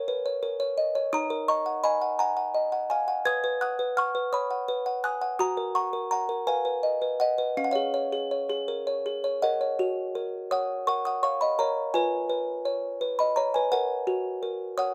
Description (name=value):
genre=classical, lullaby for music box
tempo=56 BPM (dotted quarters)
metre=6/8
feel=straight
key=F# major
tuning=A4 = 440 Hz
part: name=music box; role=solo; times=0.0-14.9 s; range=C#4 to G#6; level=-28 LUFS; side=equal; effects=none
room=light reverb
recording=close, detailed microphones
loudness=-27 LUFS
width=mono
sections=0.0-9.8 A section; 9.8-14.9 B section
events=none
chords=0.0 Gb/Bb; 1.1 D#m; 3.3 B; 5.4 F#; 6.5 B; 7.6 C#; 9.8 F#; 11.9 C#7/E#; 14.1 F#